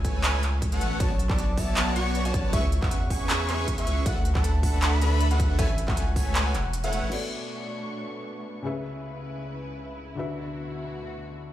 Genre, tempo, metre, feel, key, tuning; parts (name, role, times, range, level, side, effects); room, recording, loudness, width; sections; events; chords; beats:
future bass; 157 BPM; 4/4; swing 54% on 16ths, half-time; A4 = 440 Hz
airy dreamy lead; arpeggios; 0.0-7.1 s; F#5 to C#6; -37 LUFS; equal; chorus, cassette tape, sidechain pumping
big bright polysynth; riff; 0.0-7.1 s; A3 to C#6; -32 LUFS; right 1 dB; lush chorus, sidechain pumping, tape echo
saturated sub bass; bass; 0.0-7.1 s; E1 to E2; -26 LUFS; equal; sidechain pumping
big-room dance drum kit; drums; 0.0-7.2 s; crash cymbal, handclaps, hi-hat, ride cymbal; -31 LUFS; right 1 dB
electronic kick drum; drums; 0.0-6.2 s; -27 LUFS; equal
soft octave-layered synth lead; melody; 1.0-7.1 s; C#5 to B5; -36 LUFS; left 1 dB; chorus, cassette tape, sidechain pumping, tape echo
felt-muted upright piano; accompaniment; 7.1-11.5 s; C#3 to E5; -34 LUFS; left 3 dB; sidechain pumping, tape echo
dark studio string section; sustained chords; 7.1-11.5 s; C#2 to C#6; -38 LUFS; right 1 dB; sidechain pumping, low-pass filter
digital ambience; played on a big sound system in a bare room, stone room reverb; -24 LUFS; side -13 dB against mid
0.0-7.1 A section; 7.1-11.5 B section
drop 0.0-7.1; break 6.7-7.1; filter sweep on string section 7.1-11.5
0.0 Amaj7; 1.0 Bm9; 2.5 C#m7; 4.1 D69; 5.6 Amaj7; 7.1 Bm9; 8.6 C#m7; 10.2 D69
0.24 0.62 | 1.00 1.38 1.77 2.15 | 2.53 2.91 3.29 3.68 | 4.06 4.44 4.82 5.21 | 5.59 5.97 6.35 6.73 | 7.12 7.50 7.88 8.26 | 8.64 9.03 9.41 9.79 | 10.17 10.56 10.94 11.32